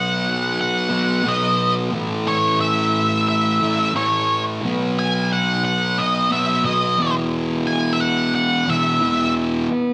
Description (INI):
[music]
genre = rock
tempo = 89 BPM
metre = 4/4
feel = straight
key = unclear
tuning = A4 = 435 Hz
[part]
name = octave-fuzz lead guitar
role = melody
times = 0.0-9.3 s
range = C#5 to G#5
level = -22 LUFS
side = equal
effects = distortion
[part]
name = fuzz guitar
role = riff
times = 0.0-9.9 s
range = E2 to B3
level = -22 LUFS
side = equal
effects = distortion, slapback echo
[sound]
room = wet recital hall reverb, RT60 1.3 s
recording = big arena sound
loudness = -20 LUFS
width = mono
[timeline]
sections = 0.0-9.9 A section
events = none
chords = 0.0 B5; 1.9 A5; 4.6 B5; 7.0 E5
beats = 0.57 1.24 | 1.92 2.60 3.27 3.95 | 4.63 5.31 5.98 6.66 | 7.33 8.01 8.69 9.36